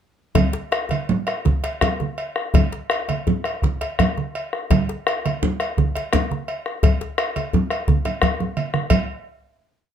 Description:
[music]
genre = west african traditional, West African drum ensemble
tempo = 112 BPM (dotted quarters)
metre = 12/8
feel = straight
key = none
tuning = none
[part]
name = bombo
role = percussion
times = 0.4-9.1 s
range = none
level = -22 LUFS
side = left 1 dB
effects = none
[part]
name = congas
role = percussion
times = 0.4-9.1 s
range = none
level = -22 LUFS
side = right 5 dB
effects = none
[part]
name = cowbell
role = percussion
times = 0.4-9.1 s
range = none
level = -28 LUFS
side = right 1 dB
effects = none
[part]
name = djembe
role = percussion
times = 0.4-9.1 s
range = none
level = -23 LUFS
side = left 5 dB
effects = none
[sound]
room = moderate studio reverb, RT60 0.6 s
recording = none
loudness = -19 LUFS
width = side -9 dB against mid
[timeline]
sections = 0.3-8.9 A section; 8.9-9.9 final hit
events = speeding up 0.3-9.9; drum fill 8.1-8.9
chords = none

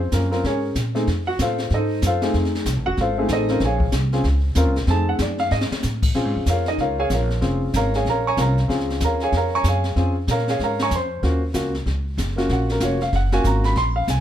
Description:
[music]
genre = jazz piano trio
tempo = 189 BPM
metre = 4/4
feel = swing 62% on 8ths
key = Bb minor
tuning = A4 = 439 Hz
[part]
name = warm baby grand piano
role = melody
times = 0.0-14.2 s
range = A3 to Db6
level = -22 LUFS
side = equal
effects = plate reverb
[part]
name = upright bass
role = bass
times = 0.0-14.2 s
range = F1 to Bb2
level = -22 LUFS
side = equal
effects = none
[part]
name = jazz brush drum kit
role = drums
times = 0.1-14.2 s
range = brushed snare drum, crash cymbal, hi-hat, kick drum, snare drum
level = -27 LUFS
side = left 1 dB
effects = none
[sound]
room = light reverb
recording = none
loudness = -18 LUFS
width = side -11 dB against mid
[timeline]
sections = 0.0-6.1 A section; 6.1-14.2 A section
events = grand piano solo 0.0-14.2; drum fill 5.5-5.8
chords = 0.0 Bbm7; 1.1 F7#9; 3.6 Bbm7; 4.9 F7#9; 6.1 Bbm7

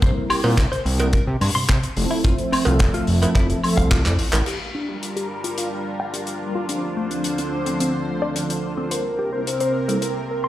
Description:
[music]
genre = nu-disco, nu disco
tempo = 108 BPM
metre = 4/4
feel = straight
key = G dorian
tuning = A4 = 441 Hz
[part]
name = mellow synth brass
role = accompaniment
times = 0.0-10.0 s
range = F3 to E5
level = -26 LUFS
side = right 1 dB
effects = chorus, dub echo
[part]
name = direct-recorded clean electric guitar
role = riff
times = 0.0-10.5 s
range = A3 to C6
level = -28 LUFS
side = left 2 dB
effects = analog chorus, low-pass filter, dub echo
[part]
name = fat analog bass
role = bass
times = 0.0-4.4 s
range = F1 to C3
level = -20 LUFS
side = equal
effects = none
[part]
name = damped 70s drum kit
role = drums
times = 0.0-10.1 s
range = crash cymbal, handclaps, hi-hat, woodblock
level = -26 LUFS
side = left 1 dB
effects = small room ambience
[part]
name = kick drum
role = drums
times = 0.0-4.0 s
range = none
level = -19 LUFS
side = equal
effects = small room ambience
[part]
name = cowbell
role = percussion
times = 0.4-4.4 s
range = none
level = -29 LUFS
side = right 4 dB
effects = none
[part]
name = lush unison pad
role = sustained chords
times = 4.8-10.5 s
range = C3 to C5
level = -27 LUFS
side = equal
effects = chorus, phaser, sidechain pumping
[part]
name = soft octave-layered synth lead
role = melody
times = 8.9-10.5 s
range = Bb4 to C5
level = -25 LUFS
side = equal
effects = chorus, phaser, cassette tape, digital delay
[sound]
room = moderate plate reverb, RT60 1.7 s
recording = played on a big sound system in a bare room, large studio reverb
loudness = -19 LUFS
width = side -14 dB against mid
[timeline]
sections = 0.0-4.5 A section; 4.5-10.5 B section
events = drum fill 4.1-4.5; filter sweep on analog polysynth 4.5-10.5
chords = 0.0 C7; 2.0 Fmaj7; 4.5 Gm7; 6.7 Dm7; 8.9 C7

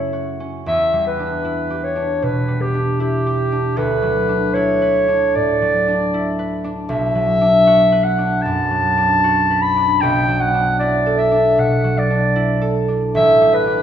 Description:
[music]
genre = classical, impressionist duo for clarinet and harp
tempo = 77 BPM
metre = 4/4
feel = rubato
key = unclear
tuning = A4 = 440 Hz
[part]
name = warm clarinet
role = melody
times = 0.0-13.8 s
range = G4 to B5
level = -16 LUFS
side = equal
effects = none
[part]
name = concert harp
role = accompaniment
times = 0.0-13.8 s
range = A1 to B4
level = -19 LUFS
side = right 1 dB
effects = none
[sound]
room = wet scoring stage reverb, RT60 1.7 s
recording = recorded in a church or concert hall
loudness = -14 LUFS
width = side -9 dB against mid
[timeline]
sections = 0.0-13.8 A section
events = none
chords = 0.0 F#m7; 0.7 Em7; 3.8 D69; 6.9 Bm7; 10.0 E9sus4/B; 13.2 A11

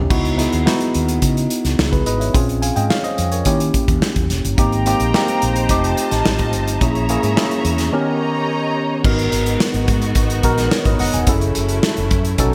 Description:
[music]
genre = polished 1980s jazz-funk pop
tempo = 108 BPM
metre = 4/4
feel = straight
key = G# minor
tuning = A4 = 441 Hz
[part]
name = tine electric piano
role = accompaniment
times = 0.0-12.5 s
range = D#3 to G#5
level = -22 LUFS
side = equal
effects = overdrive, analog chorus
[part]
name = mellow fretless electric bass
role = bass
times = 0.0-12.5 s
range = E1 to D#3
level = -23 LUFS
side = equal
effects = none
[part]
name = modern studio drum kit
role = drums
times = 0.1-12.5 s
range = crash cymbal, hi-hat, kick drum, snare drum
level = -22 LUFS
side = equal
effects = gated reverb
[part]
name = warm studio string section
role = sustained chords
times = 4.6-12.5 s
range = F#3 to A#5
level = -26 LUFS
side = equal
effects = none
[sound]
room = moderate lush hall reverb, RT60 1.8 s, small room ambience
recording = bright 1980s-style digital production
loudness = -17 LUFS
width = mono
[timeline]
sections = 0.1-9.0 A section; 9.0-12.5 B section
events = none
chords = 0.1 C#m11; 2.3 A#m9; 3.5 D#7b9; 4.6 G#maj9; 5.7 F7; 6.8 A#m7b5; 7.9 D#7b13; 9.0 G#m7; 11.3 F#m7

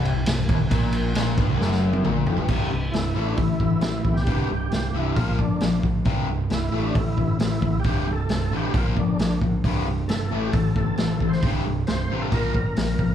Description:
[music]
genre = classic rock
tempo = 134 BPM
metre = 4/4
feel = straight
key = C mixolydian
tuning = A4 = 439 Hz
[part]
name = crunchy overdriven guitar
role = riff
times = 0.0-13.1 s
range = C2 to Bb3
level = -26 LUFS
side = left 5 dB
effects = none
[part]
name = sludgy distorted guitar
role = riff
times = 0.0-13.1 s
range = C2 to Bb3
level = -29 LUFS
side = right 4 dB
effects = overdrive
[part]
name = fuzz picked electric bass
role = bass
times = 0.0-13.1 s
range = C1 to B1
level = -27 LUFS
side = equal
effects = overdrive
[part]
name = vintage drum kit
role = drums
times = 0.1-13.1 s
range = crash cymbal, hi-hat, kick drum, ride cymbal, snare drum, toms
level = -25 LUFS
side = equal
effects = none
[part]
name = overdriven tonewheel organ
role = melody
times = 2.9-13.1 s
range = D4 to C5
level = -31 LUFS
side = right 2 dB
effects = slow rotary speaker, chorus vibrato
[sound]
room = wet large studio reverb, RT60 1.1 s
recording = band playing live in one room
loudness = -20 LUFS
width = side -10 dB against mid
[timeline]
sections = 0.0-2.5 A section; 2.5-13.1 B section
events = drum fill 1.6-2.5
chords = 0.0 C5; 3.2 A5; 4.3 C5; 5.2 Bb; 6.1 C5; 6.7 A5; 7.9 C5; 8.7 Bb; 9.6 C5; 10.3 A5; 11.4 C5; 12.3 Bb5

